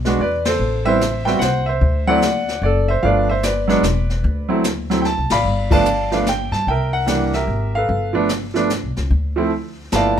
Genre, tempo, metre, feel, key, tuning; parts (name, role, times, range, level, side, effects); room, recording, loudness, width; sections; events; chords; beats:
jazz piano trio; 148 BPM; 3/4; swing 64% on 8ths; G major; A4 = 439 Hz
upright bass; bass; 0.0-10.2 s; E1 to G2; -21 LUFS; left 1 dB
jazz brush drum kit; drums; 0.0-10.2 s; brushed snare drum, crash cymbal, hi-hat, kick drum, ride cymbal, snare drum; -24 LUFS; left 3 dB
clear baby grand piano; melody; 0.1-10.2 s; E3 to B5; -18 LUFS; right 1 dB
light reverb; minimal, uncompressed stereo recording; -16 LUFS; side -9 dB against mid
0.0-5.5 A section; 5.5-10.2 A section
band accent 0.4, 5.3, 5.7; drum fill 5.1-5.5
0.2 E5; 0.6 Am7; 1.8 D9; 3.0 G9; 3.8 E5; 4.2 D9; 5.5 G9; 6.7 C7; 7.9 G9; 9.1 N.C.
0.19 | 0.59 1.00 1.41 | 1.81 2.22 2.62 | 3.03 3.43 3.84 | 4.24 4.65 5.05 | 5.46 5.86 6.27 | 6.67 7.08 7.49 | 7.89 8.30 8.70 | 9.11 9.51 9.92